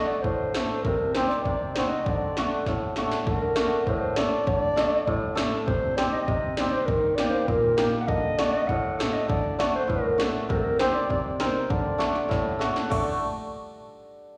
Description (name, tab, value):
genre	klezmer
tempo	100 BPM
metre	2/4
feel	straight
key	D phrygian dominant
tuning	A4 = 440 Hz
part	dark clarinet	melody	0.0-13.2 s	A4 to F#5	-29 LUFS	equal	plate reverb, slapback echo
part	hammered dulcimer	accompaniment	0.0-13.2 s	A2 to Bb4	-30 LUFS	equal	plate reverb, slapback echo
part	80s electronic pad drums	drums	0.2-13.1 s	crash cymbal, kick drum, snare drum	-32 LUFS	equal	none
room	wet club reverb, RT60 0.5 s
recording	live gig heard through the venue's PA, recital hall reverb, small room reverb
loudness	-25 LUFS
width	mono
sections	0.0-3.3 A section; 3.3-12.9 A section; 12.9-14.1 B section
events	drum fill 2.7-3.3, 12.3-12.9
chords	0.0 D5; 0.8 Cm; 2.1 D; 3.3 D5; 5.7 Cm; 6.9 Eb; 8.1 D; 10.5 Cm; 11.7 D